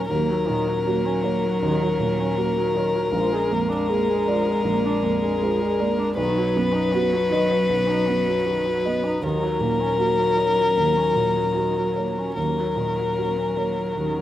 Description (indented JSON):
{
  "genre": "neoclassical piano and strings",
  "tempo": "78 BPM",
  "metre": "4/4",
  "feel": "rubato",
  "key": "Eb minor",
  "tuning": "A4 = 439 Hz",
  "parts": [
    { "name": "dark violin", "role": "melody", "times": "0.0-14.2 s", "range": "Bb4 to B4", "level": "-22 LUFS", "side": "left 4 dB", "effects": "none" },
    { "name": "warm cello", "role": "second line", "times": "0.0-14.2 s", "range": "Gb3 to Ab3", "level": "-28 LUFS", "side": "right 3 dB", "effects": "none" },
    { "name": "dark viola", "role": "accompaniment", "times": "0.0-14.2 s", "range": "Eb3 to D#4", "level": "-29 LUFS", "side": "right 3 dB", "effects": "none" },
    { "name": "felt-muted upright piano", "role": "accompaniment", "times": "0.0-14.2 s", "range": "Bb1 to D#5", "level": "-26 LUFS", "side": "right 3 dB", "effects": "none" },
    { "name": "airy breathy pad", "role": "sustained chords", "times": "0.0-14.2 s", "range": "Db4 to B4", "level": "-35 LUFS", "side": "right 1 dB", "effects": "none" }
  ],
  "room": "moderate small room reverb, RT60 0.5 s",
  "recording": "rough home demo mix",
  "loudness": "-20 LUFS",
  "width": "side -12 dB against mid",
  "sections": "0.0-14.2 A section",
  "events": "none",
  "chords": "0.0 Ebm7; 3.1 Bb7; 6.2 B; 9.2 Ebm7"
}